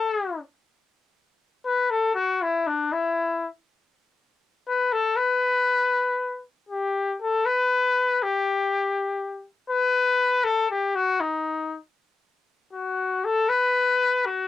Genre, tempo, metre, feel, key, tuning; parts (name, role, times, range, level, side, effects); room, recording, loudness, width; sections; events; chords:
mexican folk; 80 BPM (dotted quarters); 6/8; straight; A4 = 443 Hz
warm trumpet; solo; 0.0-14.5 s; D4 to B4; -21 LUFS; left 3 dB; cassette tape
moderate booth ambience, RT60 0.2 s; home recording on cassette; -22 LUFS; side -13 dB against mid
0.0-6.7 A section; 6.7-14.5 B section